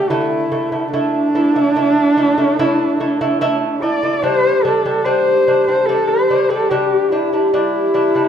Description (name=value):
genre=mongolian traditional, Mongolian folk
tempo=73 BPM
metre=4/4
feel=straight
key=G zhi mode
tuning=A4 = 441 Hz
part: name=rich horsehead fiddle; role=melody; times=0.0-8.3 s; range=D4 to D5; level=-16 LUFS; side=equal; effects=none
part: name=lute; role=arpeggios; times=0.0-8.3 s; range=D3 to E4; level=-17 LUFS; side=equal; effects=none
room=wet recital hall reverb, RT60 1.6 s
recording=none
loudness=-13 LUFS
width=side -8 dB against mid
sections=0.0-8.3 A section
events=none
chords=0.0 D5; 0.9 A5; 4.2 G5